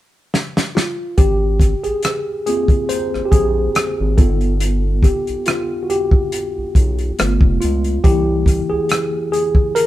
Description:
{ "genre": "R&B, neo-soul", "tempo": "70 BPM", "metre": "4/4", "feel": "swing 54% on 16ths", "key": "unclear", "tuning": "A4 = 438 Hz", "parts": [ { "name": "warm soul drum kit", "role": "drums", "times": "0.3-9.9 s", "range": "hi-hat, kick drum, rim click, snare drum", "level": "-15 LUFS", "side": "equal", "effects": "none" }, { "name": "mellow tine electric piano", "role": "accompaniment", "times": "0.8-9.9 s", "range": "E3 to C5", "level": "-19 LUFS", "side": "equal", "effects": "medium stereo tremolo" }, { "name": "round analog bass", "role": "bass", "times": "1.2-8.8 s", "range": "F1 to Db2", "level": "-19 LUFS", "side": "equal", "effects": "none" } ], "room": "light reverb", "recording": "band playing live in one room", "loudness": "-14 LUFS", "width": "side -14 dB against mid", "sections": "0.0-1.2 A section; 1.2-9.9 B section", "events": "drum fill 0.3-1.2; tine electric piano solo 1.2-9.9", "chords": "0.0 N.C.; 1.2 Ab69; 4.2 G7b13; 7.2 G7; 8.0 C7", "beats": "0.33 | 1.18 2.04 2.90 3.75 | 4.61 5.47 6.33 7.18 | 8.04 8.90 9.75" }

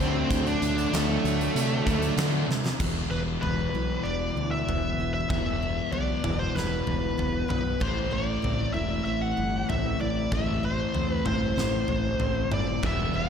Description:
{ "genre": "quiet-loud alternative rock", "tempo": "96 BPM", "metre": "4/4", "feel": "straight", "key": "E minor", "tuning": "A4 = 440 Hz", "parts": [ { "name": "bluesy overdriven lead guitar", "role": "melody", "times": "0.0-13.3 s", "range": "A3 to F#5", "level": "-30 LUFS", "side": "equal", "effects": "distortion, slapback echo, tape echo" }, { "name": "biting overdriven guitar", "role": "riff", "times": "0.0-2.5 s", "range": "D3 to D4", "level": "-33 LUFS", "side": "right 2 dB", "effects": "slapback echo" }, { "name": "sludgy distorted guitar", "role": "riff", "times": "0.0-13.3 s", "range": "E2 to D4", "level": "-31 LUFS", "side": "left 9 dB", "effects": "overdrive" }, { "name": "thick fuzz guitar", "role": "riff", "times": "0.0-2.5, 12.8-13.3 s", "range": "D3 to E4", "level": "-32 LUFS", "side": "right 11 dB", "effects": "distortion, slapback echo" }, { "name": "growling fingered electric bass", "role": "bass", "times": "0.0-13.3 s", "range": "E1 to D3", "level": "-31 LUFS", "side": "right 1 dB", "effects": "overdrive" }, { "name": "huge arena drum kit", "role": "drums", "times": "0.0-13.0 s", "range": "crash cymbal, hi-hat, kick drum, snare drum, toms", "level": "-31 LUFS", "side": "equal", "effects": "none" }, { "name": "picked steel-string acoustic guitar", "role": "arpeggios", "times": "2.8-13.3 s", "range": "A2 to E4", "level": "-34 LUFS", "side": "right 7 dB", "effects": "tape echo" } ], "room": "moderate scoring stage reverb, RT60 1.9 s, small room ambience", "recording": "big arena sound", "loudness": "-24 LUFS", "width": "side -7 dB against mid", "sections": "0.0-2.8 A section; 2.8-13.3 B section", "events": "drum fill 2.5-2.8; half time 2.8-13.3", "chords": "0.0 D; 2.8 Em; 7.8 Am", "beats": "| 0.31 0.93 1.56 2.18 | 2.81 3.43 4.05 4.68 | 5.31 5.93 6.56 7.19 | 7.82 8.44 9.07 9.70 | 10.33 10.95 11.58 12.21 | 12.84" }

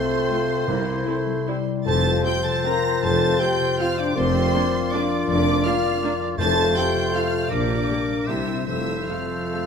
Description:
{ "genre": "classical, orchestral ballroom waltz", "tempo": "137-173 BPM", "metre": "3/4", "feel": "rubato", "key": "F major", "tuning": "A4 = 438 Hz", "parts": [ { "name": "clear studio violin section", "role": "melody", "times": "0.0-9.7 s", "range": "C6 to Bb6", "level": "-30 LUFS", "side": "right 1 dB", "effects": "none" }, { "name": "clear clarinet", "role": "second line", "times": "0.0-9.7 s", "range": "E4 to A4", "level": "-32 LUFS", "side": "left 3 dB", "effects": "none" }, { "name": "large flute ensemble", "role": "second line", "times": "0.0-9.7 s", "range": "C5 to Bb5", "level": "-31 LUFS", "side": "equal", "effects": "none" }, { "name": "rich studio violin section", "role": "second line", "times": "0.0-9.7 s", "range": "C5 to Bb5", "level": "-34 LUFS", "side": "right 2 dB", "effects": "none" }, { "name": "warm oboe", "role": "second line", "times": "0.0-9.7 s", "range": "Bb4 to D5", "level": "-31 LUFS", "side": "right 2 dB", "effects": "none" }, { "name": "warm bassoon", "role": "accompaniment", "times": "0.0-9.7 s", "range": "G3 to C4", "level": "-28 LUFS", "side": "right 3 dB", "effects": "none" }, { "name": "dark French horn section", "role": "sustained chords", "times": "0.0-9.7 s", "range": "C4 to Bb4", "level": "-26 LUFS", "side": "left 5 dB", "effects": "none" }, { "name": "concert harp", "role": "arpeggios", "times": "0.0-9.7 s", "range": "F2 to A4", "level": "-28 LUFS", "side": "left 11 dB", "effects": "none" }, { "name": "warm studio viola section", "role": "accompaniment", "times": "0.3-9.6 s", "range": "A3 to A4", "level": "-33 LUFS", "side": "right 2 dB", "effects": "none" }, { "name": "mellow tuba", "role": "bass", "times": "0.7-9.0 s", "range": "F1 to C2", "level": "-33 LUFS", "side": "right 5 dB", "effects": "none" }, { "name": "rich studio cello section", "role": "bass", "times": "0.7-9.7 s", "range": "F2 to C3", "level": "-32 LUFS", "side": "right 3 dB", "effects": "none" }, { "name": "rich studio double bass section", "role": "bass", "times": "0.7-9.0 s", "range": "F1 to C2", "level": "-32 LUFS", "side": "right 3 dB", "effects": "none" }, { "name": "timpani", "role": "percussion", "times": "0.7-1.2, 6.4-6.9 s", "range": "F2 to C3", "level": "-32 LUFS", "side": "left 1 dB", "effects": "none" } ], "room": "wet recital hall reverb, RT60 1.9 s", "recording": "none", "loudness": "-19 LUFS", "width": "side -6 dB against mid", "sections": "0.0-9.7 A section", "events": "none", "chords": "0.0 F/C; 0.7 C; 1.9 F; 4.2 Bb/F; 6.4 F; 7.5 Gm/Bb; 8.3 C7; 8.7 F", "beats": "0.29 | 0.68 1.06 1.47 | 1.86 2.25 2.64 | 3.02 3.39 3.79 | 4.16 4.53 4.92 | 5.28 5.64 6.03 | 6.39 6.76 7.14 | 7.50 7.88 8.28 | 8.67 9.09 9.52" }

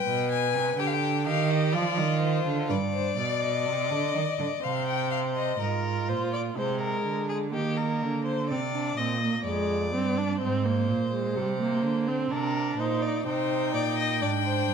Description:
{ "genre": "classical, baroque-style fugue for string quartet", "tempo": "63 BPM", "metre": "4/4", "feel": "straight", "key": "C minor", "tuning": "A4 = 438 Hz", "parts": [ { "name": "warm violin", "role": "melody", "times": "0.0-5.6, 13.3-14.7 s", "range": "B4 to Ab5", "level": "-30 LUFS", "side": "left 10 dB", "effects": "none" }, { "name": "warm violin", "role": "second line", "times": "0.0-14.7 s", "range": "F4 to Eb5", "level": "-30 LUFS", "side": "left 4 dB", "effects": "none" }, { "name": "warm cello", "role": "bass", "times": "0.1-14.7 s", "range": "F2 to F3", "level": "-29 LUFS", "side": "right 6 dB", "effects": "none" }, { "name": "warm viola", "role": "accompaniment", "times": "5.6-14.7 s", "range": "G3 to F4", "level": "-29 LUFS", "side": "right 2 dB", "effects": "none" } ], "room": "moderate recital hall reverb, RT60 1.5 s", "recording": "none", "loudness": "-25 LUFS", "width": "side -6 dB against mid", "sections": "0.0-5.6 A section; 5.6-14.7 B section", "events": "none", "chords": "0.0 G; 1.7 G7; 3.7 Cm; 5.6 Fm/Ab; 7.5 Eb5; 9.5 Ddim/F; 11.4 Cm", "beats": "0.79 | 1.75 2.70 3.67 4.63 | 5.60 6.57 7.54 8.50 | 9.46 10.41 11.37 12.32 | 13.27 14.22" }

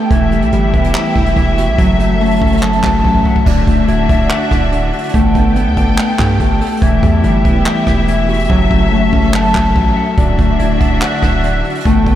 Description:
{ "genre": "hip hop, trap", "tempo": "143 BPM", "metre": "4/4", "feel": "half-time", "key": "unclear", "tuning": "A4 = 441 Hz", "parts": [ { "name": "mellow electric guitar", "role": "accompaniment", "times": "0.0-12.2 s", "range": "D3 to F#5", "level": "-19 LUFS", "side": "equal", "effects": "tremolo, low-pass filter" }, { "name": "dark symphonic string section", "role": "sustained chords", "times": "0.0-12.2 s", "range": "B3 to G5", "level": "-20 LUFS", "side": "left 1 dB", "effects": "none" }, { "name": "Celtic harp", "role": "arpeggios", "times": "0.0-12.2 s", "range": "E3 to A5", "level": "-16 LUFS", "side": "left 2 dB", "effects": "low-pass filter, analog delay" }, { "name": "hard-hitting 808-style bass", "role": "bass", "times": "0.1-12.2 s", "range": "D1 to G2", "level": "-16 LUFS", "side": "right 1 dB", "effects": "none" }, { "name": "jazz brush drum kit", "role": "drums", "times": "0.1-12.2 s", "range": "crash cymbal, handclaps, hi-hat, kick drum, rim click", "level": "-16 LUFS", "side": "equal", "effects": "none" } ], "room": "moderate huge ambient reverb, RT60 8.0 s", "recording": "dreamy mix soaked in reverb", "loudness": "-10 LUFS", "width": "side -12 dB against mid", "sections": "0.0-3.5 A section; 3.5-12.2 B section", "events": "drum fill 3.0-3.5; hi-hats muted 8.5-10.2", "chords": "0.1 Emadd9; 1.8 F#m; 3.5 Dadd9; 5.1 Gadd9; 6.8 Emadd9; 8.5 F#m; 10.2 Dadd9", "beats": "| 0.11 0.53 0.95 1.36 | 1.78 2.21 2.62 3.04 | 3.46 3.88 4.30 4.72 | 5.14 5.56 5.98 6.40 | 6.82 7.24 7.66 8.08 | 8.50 8.92 9.34 9.76 | 10.18 10.60 11.02 11.44 | 11.86" }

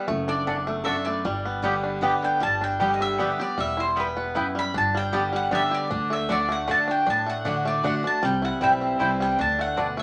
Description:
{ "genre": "bluegrass", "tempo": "155 BPM", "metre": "3/4", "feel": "straight", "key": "G major", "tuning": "A4 = 440 Hz", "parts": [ { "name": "picked steel-string acoustic guitar", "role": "accompaniment", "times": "0.0-10.0 s", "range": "E2 to G4", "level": "-31 LUFS", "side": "equal", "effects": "none" }, { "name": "bluegrass banjo", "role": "arpeggios", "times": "0.0-10.0 s", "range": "D3 to G4", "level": "-32 LUFS", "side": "equal", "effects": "none" }, { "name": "upright bass", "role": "bass", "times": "0.1-10.0 s", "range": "E1 to D2", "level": "-37 LUFS", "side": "equal", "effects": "none" }, { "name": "mandolin", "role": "melody", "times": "0.3-10.0 s", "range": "B4 to B5", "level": "-28 LUFS", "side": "equal", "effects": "none" }, { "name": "lap resonator guitar", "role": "second line", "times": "0.3-2.0 s", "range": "A4 to B4", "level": "-41 LUFS", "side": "equal", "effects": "none" }, { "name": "mandolin", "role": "stabs", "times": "0.5-9.9 s", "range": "A3 to A5", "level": "-28 LUFS", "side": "equal", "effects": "none" } ], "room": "moderate studio reverb, RT60 0.7 s", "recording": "vinyl crackle", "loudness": "-24 LUFS", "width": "mono", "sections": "0.0-2.4 A section; 2.4-10.0 B section", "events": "none", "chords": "0.1 D/F#; 1.2 G; 3.6 Em; 4.7 Gadd9; 5.9 D; 8.2 C; 9.4 D7", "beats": "| 0.08 0.47 0.86 | 1.25 1.64 2.03 | 2.42 2.81 3.19 | 3.58 3.97 4.36 | 4.75 5.13 5.52 | 5.91 6.30 6.68 | 7.07 7.46 7.84 | 8.23 8.62 9.00 | 9.39 9.78" }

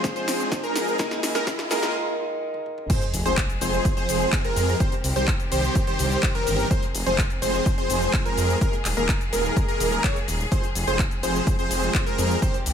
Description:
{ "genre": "EDM, festival progressive house", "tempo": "126 BPM", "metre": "4/4", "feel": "straight", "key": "F minor", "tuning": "A4 = 442 Hz", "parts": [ { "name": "fingerpicked steel-string acoustic guitar", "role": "accompaniment", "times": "0.0-2.9 s", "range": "Eb3 to Ab4", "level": "-31 LUFS", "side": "equal", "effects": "sidechain pumping, dub echo" }, { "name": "clear studio string section", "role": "sustained chords", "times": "0.0-12.7 s", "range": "Eb3 to Ab4", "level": "-33 LUFS", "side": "left 2 dB", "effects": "sidechain pumping" }, { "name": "plucky unison lead", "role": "arpeggios", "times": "0.0-12.6 s", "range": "Bb4 to Db5", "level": "-28 LUFS", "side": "equal", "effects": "analog chorus, sidechain pumping, dub echo" }, { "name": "big supersaw lead", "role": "riff", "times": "0.0-12.6 s", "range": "Eb3 to Db5", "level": "-28 LUFS", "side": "equal", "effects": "phaser, cassette tape, sidechain pumping, dub echo" }, { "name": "electronic kick drum", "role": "drums", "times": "0.0-12.5 s", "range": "none", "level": "-24 LUFS", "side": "equal", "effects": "studio reverb" }, { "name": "house drum kit", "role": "drums", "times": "0.0-12.7 s", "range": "crash cymbal, handclaps, hi-hat, shaker, snare drum, toms", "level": "-29 LUFS", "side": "left 1 dB", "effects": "studio reverb" }, { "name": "riser and sub drop", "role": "sound effects", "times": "0.0-4.8 s", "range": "none", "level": "-34 LUFS", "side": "equal", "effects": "none" }, { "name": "detuned saw bass", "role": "bass", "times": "3.1-12.7 s", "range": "Eb1 to F2", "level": "-26 LUFS", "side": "equal", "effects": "sidechain pumping" } ], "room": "light reverb", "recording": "high-pass filter", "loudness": "-21 LUFS", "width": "side -8 dB against mid", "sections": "0.0-2.9 A section; 2.9-12.7 B section", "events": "build-up 0.0-2.9; drum fill 0.0-1.9, 2.5-2.9; riser 0.0-1.9; filter sweep on supersaw synth 0.0-2.9; filter sweep 0.0-2.9; break 1.9-2.9; drop 2.9-12.7; impact 2.9-4.8", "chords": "0.0 Fm; 1.0 Ebsus4; 2.9 Fm; 4.8 Cm; 6.7 Fm; 8.6 Ebsus4; 10.5 Fm", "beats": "0.04 0.52 | 0.99 1.47 1.95 2.42 | 2.90 3.37 3.85 4.33 | 4.80 5.28 5.75 6.23 | 6.71 7.18 7.66 8.14 | 8.61 9.09 9.56 10.04 | 10.52 10.99 11.47 11.95 | 12.42" }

